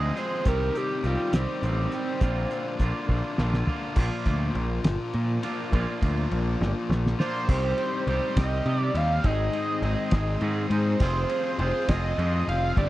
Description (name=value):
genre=indie rock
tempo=68 BPM (dotted quarters)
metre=6/8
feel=straight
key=unclear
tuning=A4 = 440 Hz
part: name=overdriven synth lead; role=melody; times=0.0-2.8, 7.2-12.9 s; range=C4 to F5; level=-29 LUFS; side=right 2 dB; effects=distortion, phaser, slapback echo
part: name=fuzz guitar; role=riff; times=0.0-12.9 s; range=G2 to Ab4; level=-31 LUFS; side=left 5 dB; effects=distortion
part: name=twangy electric guitar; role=riff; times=0.0-12.9 s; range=G2 to Ab4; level=-35 LUFS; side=right 6 dB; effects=wide subtle chorus, slapback echo
part: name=growling picked electric bass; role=bass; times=0.0-12.9 s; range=F1 to C3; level=-26 LUFS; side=equal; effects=overdrive
part: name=cloth-damped thuddy drum kit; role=drums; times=0.2-12.9 s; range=crash cymbal, hi-hat, kick drum, ride cymbal, snare drum, toms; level=-25 LUFS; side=equal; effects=none
part: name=phased string machine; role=sustained chords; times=4.5-12.9 s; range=F4 to C6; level=-42 LUFS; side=equal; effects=none
room=small room ambience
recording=dry, close 1970s-style studio recording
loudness=-23 LUFS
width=side -16 dB against mid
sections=0.0-4.0 A section; 4.0-7.5 B section; 7.5-12.9 C section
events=analog synth lead solo 0.0-4.0; drum fill 3.1-4.0, 6.6-7.5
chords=0.5 Cm; 2.2 Bb; 7.5 Cm; 9.2 Ab; 11.0 Fm